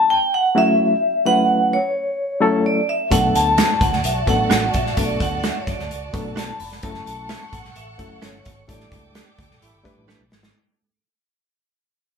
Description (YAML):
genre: uptempo 1960s-style soul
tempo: 129 BPM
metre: 4/4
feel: straight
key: unclear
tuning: A4 = 441 Hz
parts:
  - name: vibraphone with hard mallets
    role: melody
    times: 0.0-9.6 s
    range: C#5 to B5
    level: -19 LUFS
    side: equal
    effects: none
  - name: barky reed electric piano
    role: accompaniment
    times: 0.5-10.2 s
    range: F#3 to B4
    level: -21 LUFS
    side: left 2 dB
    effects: overdrive, fast tremolo
  - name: warm studio violin section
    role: second line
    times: 3.1-10.5 s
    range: F#4 to D6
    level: -33 LUFS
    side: right 2 dB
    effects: none
  - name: vintage muted fingered electric bass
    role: bass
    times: 3.1-10.5 s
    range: F1 to F#2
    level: -28 LUFS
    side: right 1 dB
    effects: none
  - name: natural country drum kit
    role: drums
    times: 3.1-10.5 s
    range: hi-hat, kick drum, snare drum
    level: -22 LUFS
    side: equal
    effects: none
  - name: direct-recorded clean electric guitar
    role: stabs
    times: 3.6-10.2 s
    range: C#4 to A4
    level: -28 LUFS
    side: right 6 dB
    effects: none
  - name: mellow horn section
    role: second line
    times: 9.6-9.9 s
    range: G3 to E4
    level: -60 LUFS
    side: right 4 dB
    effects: none
room: moderate stone room reverb, RT60 1.2 s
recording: band playing live in one room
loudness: -16 LUFS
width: side -6 dB against mid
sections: 0.0-10.5 A section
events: fade-out 0.0-10.5; band accent 8.7-10.5; drum fill 10.1-10.5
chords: 0.0 F#m7; 3.1 Bm7; 6.8 F#m7; 8.7 A7sus4